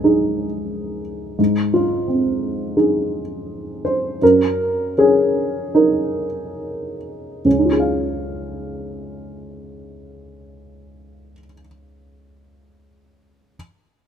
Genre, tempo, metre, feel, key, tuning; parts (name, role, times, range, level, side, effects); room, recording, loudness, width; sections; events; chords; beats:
classical; 68-90 BPM; 4/4; rubato; Db major; A4 = 440 Hz
dark upright piano; accompaniment; 0.0-13.6 s; Db2 to F5; -17 LUFS; equal
light reverb; minimal, uncompressed stereo recording; -17 LUFS; side -8 dB against mid
0.0-7.4 A section; 7.4-10.9 B section
slowing down 0.0-7.4
0.0 Dbsus2; 1.4 Ab6; 4.2 Gb6; 7.4 Dbadd9
0.04 0.70 | 1.38 2.07 2.76 3.48 | 4.21 4.96 5.75 6.57 | 7.45 8.33 9.20 10.08